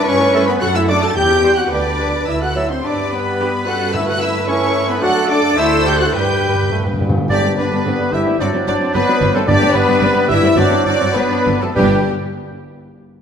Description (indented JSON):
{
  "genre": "quick classical-period movement for symphony orchestra",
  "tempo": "96-113 BPM",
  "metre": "2/4",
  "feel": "rubato",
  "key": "G major",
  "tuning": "A4 = 440 Hz",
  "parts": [
    { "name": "warm studio violin section", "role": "melody", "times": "0.0-12.1 s", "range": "C4 to A6", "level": "-24 LUFS", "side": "left 3 dB", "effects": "none" },
    { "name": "clear clarinet", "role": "second line", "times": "0.0-12.0 s", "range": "B3 to C5", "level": "-25 LUFS", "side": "left 2 dB", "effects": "none" },
    { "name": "mellow flute section", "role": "second line", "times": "0.0-12.1 s", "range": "C4 to A5", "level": "-25 LUFS", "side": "left 1 dB", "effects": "none" },
    { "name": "warm studio violin section", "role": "second line", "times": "0.0-12.1 s", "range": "G4 to A5", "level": "-24 LUFS", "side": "left 3 dB", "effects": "none" },
    { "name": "rich studio viola section", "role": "accompaniment", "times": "0.0-12.1 s", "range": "D3 to C5", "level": "-25 LUFS", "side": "right 1 dB", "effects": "none" },
    { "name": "warm French horn section", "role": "sustained chords", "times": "0.0-12.0 s", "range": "G3 to A4", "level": "-21 LUFS", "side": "left 3 dB", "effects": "none" },
    { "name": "dark trumpet section", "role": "stabs", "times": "0.0-12.0 s", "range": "G4 to A5", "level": "-23 LUFS", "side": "right 2 dB", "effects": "none" },
    { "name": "warm studio cello section", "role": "bass", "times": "0.0-12.1 s", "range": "G2 to B4", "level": "-23 LUFS", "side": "right 3 dB", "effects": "none" },
    { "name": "warm studio double bass section", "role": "bass", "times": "0.1-12.1 s", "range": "G1 to G2", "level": "-22 LUFS", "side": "right 3 dB", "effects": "none" },
    { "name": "clear oboe", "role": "second line", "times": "0.3-12.0 s", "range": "G4 to E5", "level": "-26 LUFS", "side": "right 1 dB", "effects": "none" },
    { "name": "warm bassoon", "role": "accompaniment", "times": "0.3-12.0 s", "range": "F#3 to A3", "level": "-25 LUFS", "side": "right 2 dB", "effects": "none" },
    { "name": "timpani", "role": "percussion", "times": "3.9-12.0 s", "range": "G2", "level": "-23 LUFS", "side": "left 1 dB", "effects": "none" }
  ],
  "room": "wet scoring stage reverb, RT60 1.9 s",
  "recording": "none",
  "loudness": "-13 LUFS",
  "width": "side -7 dB against mid",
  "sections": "0.0-7.3 A section; 7.3-11.8 B section; 11.8-12.9 C section",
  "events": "timpani fill 6.2-7.3",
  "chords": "0.0 A7/G; 0.6 D/F#; 1.2 C/E; 1.7 G/D; 2.3 D; 2.9 G; 3.9 A7/G; 5.0 D/F#; 5.6 D5; 6.2 G; 8.4 D7/G; 9.5 G; 10.6 D7/G; 11.8 G"
}